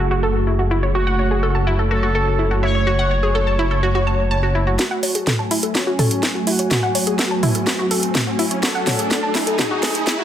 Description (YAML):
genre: melodic techno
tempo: 125 BPM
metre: 4/4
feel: straight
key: F# minor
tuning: A4 = 440 Hz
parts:
  - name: resonant sweep polysynth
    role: melody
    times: 0.0-10.2 s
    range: C#4 to C#5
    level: -24 LUFS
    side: equal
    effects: chorus, sidechain pumping, dub echo
  - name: dark analog pad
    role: sustained chords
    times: 0.0-10.2 s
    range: F#3 to G#5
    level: -25 LUFS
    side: equal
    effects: chorus, phaser, sidechain pumping
  - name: analog pluck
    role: arpeggios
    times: 0.0-10.2 s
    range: E4 to A5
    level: -22 LUFS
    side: left 1 dB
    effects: chorus, sidechain pumping, dub echo
  - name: swelling detuned saw bass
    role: bass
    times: 0.0-4.8 s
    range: F#1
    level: -19 LUFS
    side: equal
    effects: sidechain pumping
  - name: electronic kick drum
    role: drums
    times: 4.8-10.2 s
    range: none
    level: -28 LUFS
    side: equal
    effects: high-pass filter on kick, small room ambience
  - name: house drum kit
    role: drums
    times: 4.8-10.2 s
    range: hi-hat, snare drum, toms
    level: -20 LUFS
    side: equal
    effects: small room ambience, sidechain pumping on hats, sidechain pumping on toms
  - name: riser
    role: sound effects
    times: 6.4-10.2 s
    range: none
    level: -28 LUFS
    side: right 2 dB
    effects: none
room: moderate digital room reverb, RT60 1.1 s, digital ambience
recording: dense, heavily limited modern master, high-pass filter, low-pass filter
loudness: -16 LUFS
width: side -10 dB against mid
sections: 0.0-4.8 A section; 4.8-10.2 B section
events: filter sweep 0.0-4.8; build-up 4.8-10.2; drum fill 4.8-10.2; filter sweep on analog polysynth 4.8-10.2; riser 6.4-10.2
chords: 0.0 F#madd9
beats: 0.47 | 0.95 1.43 1.91 2.39 | 2.87 3.35 3.83 4.31 | 4.79 5.27 5.75 6.23 | 6.71 7.19 7.67 8.15 | 8.63 9.11 9.59 10.07